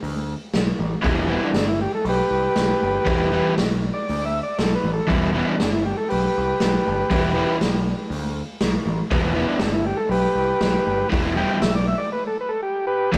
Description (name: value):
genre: garage rock duo or trio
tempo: 119 BPM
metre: 4/4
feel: straight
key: E minor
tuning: A4 = 440 Hz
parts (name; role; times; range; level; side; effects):
- growling picked electric bass; bass; 0.0-13.2 s; E1 to D2; -28 LUFS; equal; overdrive
- raw garage drum kit; drums; 0.0-13.2 s; crash cymbal, hi-hat, kick drum, snare drum; -27 LUFS; equal; none
- raw garage guitar; riff; 1.0-13.2 s; E3 to E4; -24 LUFS; equal; overdrive
- overdriven combo organ; melody; 1.3-13.1 s; B3 to G5; -25 LUFS; equal; tape echo
room: light reverb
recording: rough rehearsal-room recording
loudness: -22 LUFS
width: mono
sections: 0.0-13.1 A section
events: break 12.1-13.1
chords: 0.0 Em